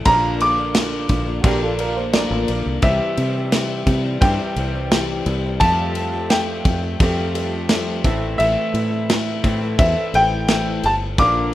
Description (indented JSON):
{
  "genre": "folk rock and heartland rock",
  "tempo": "86 BPM",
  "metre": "4/4",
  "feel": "straight",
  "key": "unclear",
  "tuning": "A4 = 440 Hz",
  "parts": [
    { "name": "picked plugged-in swing-style acoustic guitar", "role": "accompaniment", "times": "0.0-11.5 s", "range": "A2 to C5", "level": "-29 LUFS", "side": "left 5 dB", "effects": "none" },
    { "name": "fingered electric bass", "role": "bass", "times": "0.0-11.5 s", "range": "G1 to C3", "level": "-24 LUFS", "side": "equal", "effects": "none" },
    { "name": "clear grand piano", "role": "melody", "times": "0.1-11.5 s", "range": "E5 to D6", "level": "-21 LUFS", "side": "equal", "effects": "none" },
    { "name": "reed electric piano", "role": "accompaniment", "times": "0.1-11.5 s", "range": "G4 to G5", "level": "-32 LUFS", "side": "right 3 dB", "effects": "none" },
    { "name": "electric guitar through a small old amp", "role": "riff", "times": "0.1-11.5 s", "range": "A2 to G4", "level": "-26 LUFS", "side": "right 1 dB", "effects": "none" },
    { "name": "loose indie drum kit", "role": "drums", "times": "0.1-11.3 s", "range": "crash cymbal, kick drum, snare drum", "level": "-21 LUFS", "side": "equal", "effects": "none" },
    { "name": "clear upright piano", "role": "second line", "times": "1.4-2.6 s", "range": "F#4 to D5", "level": "-25 LUFS", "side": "right 3 dB", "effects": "none" }
  ],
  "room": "studio reverb",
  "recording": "rough home demo mix",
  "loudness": "-17 LUFS",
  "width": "side -14 dB against mid",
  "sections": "0.0-11.5 A section",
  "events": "none",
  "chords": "0.1 Bb; 2.8 C; 5.6 Fadd9; 8.0 Am"
}